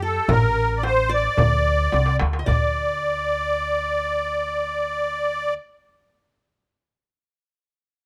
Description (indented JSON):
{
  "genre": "Arabic maqam ensemble",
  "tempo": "110 BPM",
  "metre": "4/4",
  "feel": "straight",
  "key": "D maqam hijaz",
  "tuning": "A4 = 440 Hz",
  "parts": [
    { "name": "musette accordion", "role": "melody", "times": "0.0-5.5 s", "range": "A4 to D5", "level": "-24 LUFS", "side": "equal", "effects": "none" },
    { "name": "qanun", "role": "second line", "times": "0.0-5.5 s", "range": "G4 to Eb5+25c", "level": "-36 LUFS", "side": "equal", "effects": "none" },
    { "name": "upright bass", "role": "bass", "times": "0.0-5.6 s", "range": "A1 to F#2", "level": "-28 LUFS", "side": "equal", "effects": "none" },
    { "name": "darbuka", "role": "percussion", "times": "0.3-2.7 s", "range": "none", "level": "-26 LUFS", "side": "equal", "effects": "none" },
    { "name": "frame drum", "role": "percussion", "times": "0.3-2.7 s", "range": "none", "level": "-30 LUFS", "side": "equal", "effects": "none" }
  ],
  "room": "moderate studio reverb, RT60 0.6 s",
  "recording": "rough home demo mix",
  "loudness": "-22 LUFS",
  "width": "mono",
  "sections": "0.0-2.5 A section; 2.5-6.8 B section",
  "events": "drum fill 1.9-2.5",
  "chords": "none",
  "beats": "| 0.28 0.83 1.37 1.92 | 2.46 3.01 3.55 4.09 | 4.64 5.18"
}